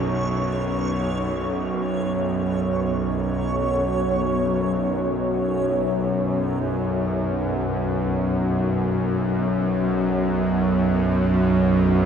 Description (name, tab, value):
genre	dark ambient drone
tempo	free time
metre	none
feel	none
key	unclear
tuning	A4 = 441 Hz
part	bowed-like drone	drone	0.0-12.1 s	B1 to F#2	-21 LUFS	equal	built-in reverb
part	backwards swelling texture	texture	0.0-4.9 s	C#5	-28 LUFS	right 1 dB	built-in reverb
room	wet huge ambient reverb, RT60 7.6 s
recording	dark, warm production, nothing above 10.8 kHz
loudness	-20 LUFS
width	side -7 dB against mid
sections	0.0-4.9 A section; 4.9-12.1 B section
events	none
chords	0.0 Bsus2